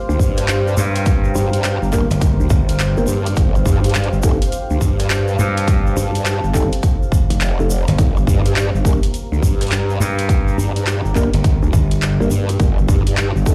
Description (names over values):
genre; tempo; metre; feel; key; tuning
glitch hop; 104 BPM; 4/4; swing 64% on 16ths; G minor; A4 = 440 Hz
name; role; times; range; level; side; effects
deep dark ambient pad; texture; 0.0-13.5 s; G4 to Bb5; -30 LUFS; equal; chorus, built-in reverb, sidechain pumping
growl bass; bass; 0.1-13.5 s; F1 to G2; -20 LUFS; equal; chorus
tube shaker; percussion; 0.1-13.5 s; none; -36 LUFS; equal; none
electronic kick drum; drums; 0.2-13.5 s; none; -19 LUFS; equal; studio reverb
dubstep drum kit; drums; 0.4-13.3 s; handclaps, hi-hat, rim click; -26 LUFS; equal; studio reverb
gritty slap bass; bass; 0.8-12.2 s; G1 to G2; -20 LUFS; equal; overdrive
mellow tine electric piano; stabs; 1.9-13.5 s; Bb3 to Bb4; -26 LUFS; equal; vintage 12-bit sampler grit, sidechain pumping, digital delay
room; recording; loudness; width
little or no reverb; played on a big sound system in a bare room, large studio reverb; -17 LUFS; mono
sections
0.0-13.5 A section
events
none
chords
0.0 Gm; 3.4 Am7/G; 8.0 Gm; 12.6 Am7/G (rootless)